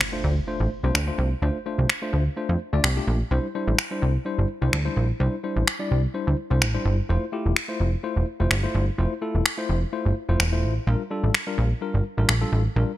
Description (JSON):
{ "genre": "dance-pop", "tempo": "127 BPM", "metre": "4/4", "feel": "straight", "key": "F major", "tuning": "A4 = 438 Hz", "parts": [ { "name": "electronic finger snaps", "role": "drums", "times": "0.0-12.4 s", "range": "none", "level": "-25 LUFS", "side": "left 1 dB", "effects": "none" }, { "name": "impact", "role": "sound effects", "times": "0.0-1.4 s", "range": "none", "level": "-38 LUFS", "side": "equal", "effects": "none" }, { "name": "tine electric piano", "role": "accompaniment", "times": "0.1-12.9 s", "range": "G3 to D5", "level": "-28 LUFS", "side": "left 2 dB", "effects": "medium stereo tremolo" }, { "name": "plucky analog bass", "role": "bass", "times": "0.2-12.8 s", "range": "E1 to F2", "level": "-22 LUFS", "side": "equal", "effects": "none" } ], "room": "digital ambience", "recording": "bright 1980s-style digital production", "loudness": "-21 LUFS", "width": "side -15 dB against mid", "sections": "0.0-13.0 A section", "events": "impact 0.0-1.4", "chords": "0.0 Dm7; 3.3 Cadd9; 7.1 Fmaj7; 10.9 Bb6" }